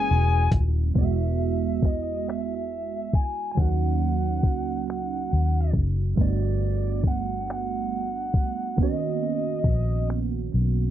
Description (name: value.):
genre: slow six-eight R&B.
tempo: 46 BPM (dotted quarters).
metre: 6/8.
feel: straight.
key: unclear.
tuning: A4 = 439 Hz.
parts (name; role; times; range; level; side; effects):
high-gain lead guitar; melody; 0.0-10.1 s; D5 to G#5; -30 LUFS; left 3 dB; distortion, slapback echo.
tine electric piano; accompaniment; 0.0-10.9 s; D#3 to F#4; -29 LUFS; right 16 dB; phaser.
clear horn section; stabs; 0.0-0.5 s; E3 to G#4; -32 LUFS; left 18 dB; none.
vintage muted fingered electric bass; bass; 0.0-10.9 s; D#1 to D#2; -24 LUFS; left 1 dB; none.
dusty soul sampler-style drum kit; drums; 0.5-10.7 s; finger snaps, hi-hat, kick drum; -23 LUFS; left 1 dB; none.
room: little or no reverb.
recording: dry, close 1970s-style studio recording, low-pass filter.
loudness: -22 LUFS.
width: side -11 dB against mid.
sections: 1.0-10.9 A section.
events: none.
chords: 0.0 F#9; 1.0 Eadd9; 3.6 D#m7; 6.2 Gmaj9; 8.8 Bmaj9.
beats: | 0.96 2.26 | 3.57 4.87 | 6.17 7.48 | 8.78 10.09.